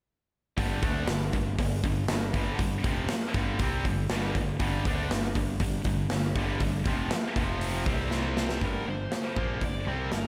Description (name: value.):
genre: hard rock.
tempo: 120 BPM.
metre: 4/4.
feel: straight.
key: G minor.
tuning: A4 = 440 Hz.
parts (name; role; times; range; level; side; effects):
heavy high-gain guitar; riff; 0.6-10.3 s; F2 to D4; -38 LUFS; equal; distortion.
tight distorted guitar; riff; 0.6-10.3 s; F2 to D4; -37 LUFS; equal; distortion.
overdriven picked electric bass; bass; 0.6-10.3 s; F1 to D2; -35 LUFS; equal; none.
big rock drum kit; drums; 0.6-10.2 s; hi-hat, kick drum, snare drum; -32 LUFS; equal; none.
bluesy overdriven lead guitar; melody; 8.7-10.3 s; Bb4 to D5; -40 LUFS; equal; distortion, slapback echo.
room: moderate lush hall reverb, RT60 1.9 s.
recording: big arena sound.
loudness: -29 LUFS.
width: mono.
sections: 0.6-8.6 A section; 8.6-10.3 B section.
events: drum fill 8.1-8.6.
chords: 0.6 G5; 7.4 F5; 7.9 C5; 8.6 Gm.